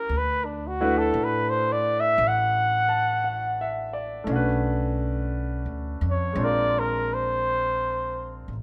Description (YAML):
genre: jazz ballad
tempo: 57 BPM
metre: 4/4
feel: swing 67% on 8ths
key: unclear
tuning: A4 = 440 Hz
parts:
  - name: warm flugelhorn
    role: melody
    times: 0.0-8.3 s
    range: D4 to F#5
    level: -26 LUFS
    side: equal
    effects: none
  - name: clear concert grand piano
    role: accompaniment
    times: 0.0-8.5 s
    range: Ab3 to A5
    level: -31 LUFS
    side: equal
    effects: none
  - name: upright bass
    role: bass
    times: 0.1-8.6 s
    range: A1 to A2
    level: -32 LUFS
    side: equal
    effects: none
room: moderate large studio reverb, RT60 1.3 s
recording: none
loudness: -25 LUFS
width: mono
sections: 0.0-8.5 A section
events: flugelhorn solo 0.0-8.5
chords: 0.1 D69; 4.3 Bm9; 6.4 Bb9